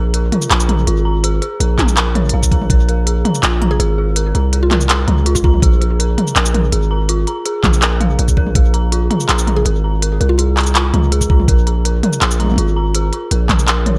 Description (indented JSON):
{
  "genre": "half-time drum and bass",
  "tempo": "164 BPM",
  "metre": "4/4",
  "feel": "half-time",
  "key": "unclear",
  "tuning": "A4 = 440 Hz",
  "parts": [
    { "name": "dark detuned synth bell", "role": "arpeggios", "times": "0.0-14.0 s", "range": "F4 to Bb5", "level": "-25 LUFS", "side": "equal", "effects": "chorus, dub echo" },
    { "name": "long sustained 808-style bass", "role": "bass", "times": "0.0-14.0 s", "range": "Ab1 to Db2", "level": "-17 LUFS", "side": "equal", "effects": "none" },
    { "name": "industrial drum kit", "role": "drums", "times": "0.1-13.9 s", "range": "handclaps, hi-hat, shaker, toms", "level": "-19 LUFS", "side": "equal", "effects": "none" },
    { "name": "electronic kick drum", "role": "drums", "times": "1.8-2.8, 5.4-8.6, 11.2-13.6 s", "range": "none", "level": "-16 LUFS", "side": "equal", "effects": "none" },
    { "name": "mallet-like synth pluck", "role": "melody", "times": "3.7-5.5, 9.6-10.4 s", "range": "F4 to Ab4", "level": "-28 LUFS", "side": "equal", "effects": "none" }
  ],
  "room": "little or no reverb",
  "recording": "echo-heavy mix",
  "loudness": "-15 LUFS",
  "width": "mono",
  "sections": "0.0-14.0 A section",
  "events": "none",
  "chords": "0.0 Bb5",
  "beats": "0.14 0.51 0.87 | 1.24 1.60 1.97 2.33 | 2.70 3.07 3.43 3.80 | 4.17 4.53 4.90 5.26 | 5.63 5.99 6.36 6.72 | 7.09 7.46 7.82 8.19 | 8.55 8.92 9.29 9.65 | 10.02 10.38 10.75 11.12 | 11.48 11.85 12.21 12.58 | 12.95 13.31 13.68"
}